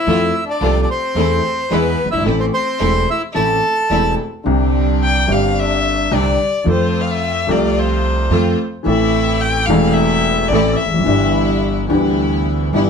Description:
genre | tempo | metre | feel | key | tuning
tango | 109 BPM | 4/4 | rubato | A minor, C major from 4.5 s | A4 = 440 Hz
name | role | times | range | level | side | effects
bandoneon | melody | 0.0-4.1 s | B4 to A5 | -19 LUFS | right 2 dB | none
rich violin | second line | 0.0-11.6 s | B3 to G5 | -21 LUFS | left 4 dB | none
warm upright piano | accompaniment | 0.1-12.9 s | E1 to A4 | -17 LUFS | left 2 dB | none
rich studio string section | stabs | 0.1-12.9 s | G3 to F4 | -23 LUFS | right 2 dB | none
upright bass | bass | 0.1-12.9 s | E1 to F2 | -20 LUFS | right 2 dB | none
room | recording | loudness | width
moderate studio reverb, RT60 0.6 s | faint mains hum | -14 LUFS | side -6 dB against mid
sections
0.0-4.5 A section; 4.5-12.9 B section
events
violin solo 4.5-12.9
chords
0.1 F; 1.2 Am/E; 1.7 E; 2.3 Am; 4.5 Csus2; 6.7 F; 8.9 Am; 11.1 G6

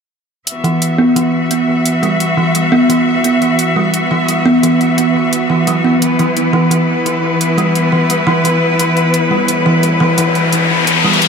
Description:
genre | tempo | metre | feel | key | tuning
half-time drum and bass | 173 BPM | 4/4 | half-time | E minor | A4 = 441 Hz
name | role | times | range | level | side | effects
bright studio cello section | sustained chords | 0.5-11.3 s | E3 to E5 | -15 LUFS | left 2 dB | none
electronic hi-hat | drums | 0.5-11.3 s | none | -20 LUFS | equal | overdrive
kalimba | arpeggios | 0.6-11.3 s | E3 to B3 | -13 LUFS | right 1 dB | vintage 12-bit sampler grit, low-pass filter, tape echo
riser | sound effects | 9.4-11.3 s | none | -15 LUFS | left 3 dB | none
room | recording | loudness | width
moderate plate reverb, RT60 2.2 s | echo-heavy mix | -11 LUFS | side -6 dB against mid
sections
0.5-11.3 A section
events
riser 9.4-11.3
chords
0.5 E5

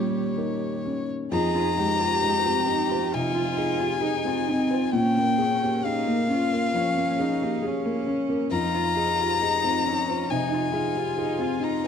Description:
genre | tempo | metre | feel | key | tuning
neoclassical piano and strings | 67 BPM | 4/4 | rubato | F minor | A4 = 439 Hz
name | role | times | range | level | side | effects
warm violin | melody | 0.0-11.9 s | Db5 to Bb5 | -26 LUFS | left 5 dB | none
warm cello | second line | 0.0-11.9 s | G3 to Ab4 | -29 LUFS | right 6 dB | none
felt-muted upright piano | accompaniment | 0.0-11.9 s | F2 to C5 | -27 LUFS | left 3 dB | none
rich viola | accompaniment | 0.0-11.9 s | Bb3 to G4 | -33 LUFS | right 4 dB | none
room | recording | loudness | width
moderate large studio reverb, RT60 1.4 s | dark, warm production | -22 LUFS | side -7 dB against mid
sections
0.0-1.3 A section; 1.3-11.9 B section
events
none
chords
0.0 Eb7; 1.3 Fm7; 4.9 Bbm7; 8.5 Fm7

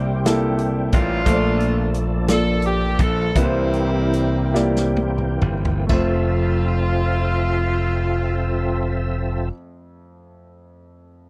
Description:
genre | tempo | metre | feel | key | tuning
slow gospel | 41-60 BPM (dotted quarters) | 6/8 | straight | F major | A4 = 440 Hz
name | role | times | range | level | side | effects
clear saxophone section | melody | 0.0-9.5 s | G3 to A4 | -28 LUFS | equal | none
warm grand piano | accompaniment | 0.0-11.3 s | F2 to E5 | -26 LUFS | equal | none
percussive tonewheel organ | sustained chords | 0.0-9.5 s | E3 to E5 | -30 LUFS | equal | slow rotary speaker, overdrive, chorus vibrato
glassy slap bass | bass | 0.0-9.5 s | F1 to C2 | -24 LUFS | equal | none
natural country drum kit | drums | 0.3-6.1 s | hi-hat, kick drum, snare drum, splash cymbal, toms | -24 LUFS | equal | none
room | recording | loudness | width
little or no reverb | dry, close 1970s-style studio recording | -20 LUFS | mono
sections
0.0-5.9 A section; 5.9-11.3 B section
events
slowing down 1.3-5.9; drum fill 4.5-5.9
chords
0.0 C7; 1.3 Bbmaj7; 3.4 C7; 5.9 Fmaj7

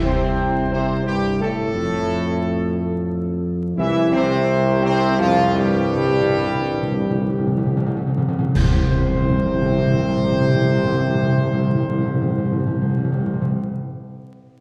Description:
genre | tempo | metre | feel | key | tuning
classical, ceremonial fanfare | 62-90 BPM | 3/4 | straight | unclear | A4 = 443 Hz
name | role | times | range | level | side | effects
dark French horn section | sustained chords | 0.0-13.5 s | F3 to E4 | -28 LUFS | equal | none
mellow trombone section | sustained chords | 0.0-13.5 s | F2 to E3 | -29 LUFS | equal | none
warm tuba | bass | 0.0-13.5 s | C2 to F2 | -24 LUFS | equal | none
timpani | percussion | 0.0-0.7, 6.0-13.5 s | C3 | -24 LUFS | equal | none
dark trumpet section | melody | 0.1-13.5 s | F4 to E5 | -28 LUFS | equal | none
clash cymbals and concert bass drum | percussion | 8.6-10.4 s | none | -28 LUFS | equal | none
room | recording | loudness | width
wet scoring stage reverb, RT60 1.6 s | heard from further back in the room, vinyl crackle | -20 LUFS | mono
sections
0.0-8.5 A section; 8.5-14.1 B section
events
slowing down 2.8-8.5; timpani fill 6.0-8.5; band accent 8.5-9.5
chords
0.0 C5; 1.7 F; 3.8 C5; 8.5 N.C.

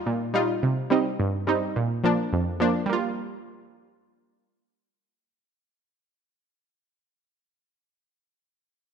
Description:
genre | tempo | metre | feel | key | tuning
dancehall | 106 BPM | 4/4 | straight | G minor | A4 = 441 Hz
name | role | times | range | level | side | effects
analog pluck | accompaniment | 0.1-6.6 s | F2 to F4 | -23 LUFS | right 1 dB | chorus
room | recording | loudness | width
moderate lush hall reverb, RT60 1.8 s | bright 1980s-style digital production | -22 LUFS | side -7 dB against mid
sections
0.0-2.9 A section; 2.9-5.2 B section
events
none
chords
0.0 Ebadd9; 0.6 Cm; 1.8 Bb; 2.9 Gm7

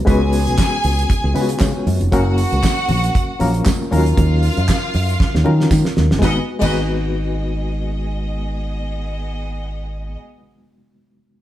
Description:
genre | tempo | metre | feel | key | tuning
disco | 117 BPM | 4/4 | swing 56% on 16ths | G# dorian | A4 = 440 Hz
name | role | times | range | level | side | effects
barky reed electric piano | accompaniment | 0.0-11.4 s | E#3 to F#5 | -22 LUFS | left 2 dB | overdrive, fast tremolo
bright symphonic string section | second line | 0.1-10.2 s | B3 to G#5 | -25 LUFS | equal | none
fingered electric bass | bass | 0.1-10.2 s | E#1 to D#3 | -18 LUFS | equal | none
damped 70s drum kit | drums | 0.1-6.8 s | crash cymbal, handclaps, hi-hat, kick drum, snare drum | -19 LUFS | right 1 dB | none
congas | percussion | 0.1-6.8 s | none | -29 LUFS | left 5 dB | none
tambourine | percussion | 0.6-6.8 s | none | -35 LUFS | right 6 dB | none
room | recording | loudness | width
light reverb | band playing live in one room | -15 LUFS | side -13 dB against mid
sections
0.0-6.2 A section; 6.2-10.3 B section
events
reed electric piano fill 1.1-2.1; drum fill 5.2-6.2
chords
0.1 C#7sus4; 2.1 F#maj7; 3.9 D#m9; 6.2 G#m7

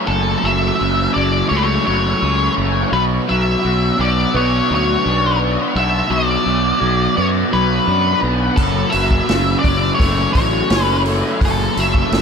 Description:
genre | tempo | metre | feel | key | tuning
psychedelic rock | 85 BPM | 4/4 | straight | F# minor | A4 = 442 Hz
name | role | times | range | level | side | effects
raw garage guitar | riff | 0.0-12.2 s | F#2 to D4 | -19 LUFS | equal | overdrive, flanger
octave-fuzz lead guitar | melody | 0.1-12.2 s | A4 to E5 | -18 LUFS | left 1 dB | distortion, ping-pong delay
fuzz fingered electric bass | bass | 0.1-12.2 s | F#1 to F#2 | -20 LUFS | equal | overdrive
vintage drum kit | drums | 8.6-12.2 s | crash cymbal, hi-hat, kick drum, snare drum | -19 LUFS | equal | none
room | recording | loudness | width
moderate huge ambient reverb, RT60 7.5 s | dreamy mix soaked in reverb | -14 LUFS | side -6 dB against mid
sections
0.0-12.2 A section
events
none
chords
0.0 F#m; 2.9 Bm; 8.6 F#m

